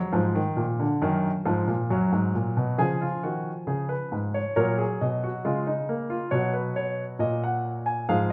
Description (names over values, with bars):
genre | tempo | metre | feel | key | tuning
classical, baroque-style 4-part fugue for grand piano | 68 BPM | 4/4 | straight | unclear | A4 = 440 Hz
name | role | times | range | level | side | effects
warm grand piano | solo | 0.0-8.3 s | F#2 to G#5 | -26 LUFS | equal | none
room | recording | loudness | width
wet recital hall reverb, RT60 1.4 s | none | -26 LUFS | mono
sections
0.0-2.8 A section; 2.8-8.3 B section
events
none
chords
0.0 A#; 1.0 D#m/F#; 2.8 C#; 4.5 F#/A#; 6.3 B